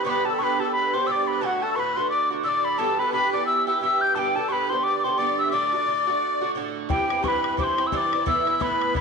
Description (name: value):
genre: celtic folk, Celtic hornpipe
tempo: 175 BPM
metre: 4/4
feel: swing 60% on 8ths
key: D mixolydian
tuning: A4 = 439 Hz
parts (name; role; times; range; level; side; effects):
- mellow hollow wooden whistle; melody; 0.0-9.0 s; F#5 to G6; -23 LUFS; left 1 dB; none
- musette accordion; second line; 0.0-9.0 s; F#4 to G5; -29 LUFS; left 6 dB; none
- Irish bouzouki; accompaniment; 0.0-9.0 s; G2 to G4; -28 LUFS; right 9 dB; none
- bodhran; percussion; 6.9-9.0 s; none; -31 LUFS; left 4 dB; none
room: wet echo chamber reverb, RT60 1.7 s, studio reverb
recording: 1960s-style stereo with parts hard left and right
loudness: -21 LUFS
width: side -5 dB against mid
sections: 0.0-6.9 A section; 6.9-9.0 B section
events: none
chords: 0.0 G; 1.4 D; 2.8 Em; 4.2 G; 5.5 D; 6.9 C; 8.3 Asus2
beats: | 0.05 0.39 0.73 1.07 | 1.42 1.76 2.10 2.44 | 2.79 3.13 3.47 3.81 | 4.16 4.50 4.84 5.18 | 5.53 5.87 6.21 6.55 | 6.90 7.24 7.58 7.92 | 8.27 8.61 8.95